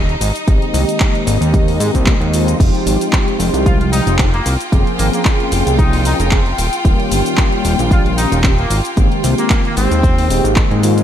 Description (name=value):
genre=nu-disco, nu disco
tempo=113 BPM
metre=4/4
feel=swing 54% on 16ths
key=unclear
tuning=A4 = 441 Hz
part: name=clear studio string section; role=sustained chords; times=0.0-11.0 s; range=Eb4 to G5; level=-23 LUFS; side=left 1 dB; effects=sidechain pumping
part: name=fat analog bass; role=bass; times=0.0-11.0 s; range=Eb1 to Ab2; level=-16 LUFS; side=equal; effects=sidechain pumping
part: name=house drum kit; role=drums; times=0.1-11.0 s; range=cabasa, crash cymbal, handclaps, hi-hat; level=-22 LUFS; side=equal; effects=none
part: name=mellow synth brass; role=accompaniment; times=0.5-11.0 s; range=Eb3 to Ab4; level=-19 LUFS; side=equal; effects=chorus, sidechain pumping, analog delay
part: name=electronic kick drum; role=drums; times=0.5-10.7 s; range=none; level=-14 LUFS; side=equal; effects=none
part: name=clear trumpet section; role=melody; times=3.7-10.5 s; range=Bb3 to F4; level=-23 LUFS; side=left 1 dB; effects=analog delay
room=light reverb, digital ambience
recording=none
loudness=-12 LUFS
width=side -10 dB against mid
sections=0.0-11.0 A section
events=none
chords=0.2 Abmaj9; 2.6 Fm9; 4.7 Bbm9/F; 6.6 Eb7; 8.7 Abmaj9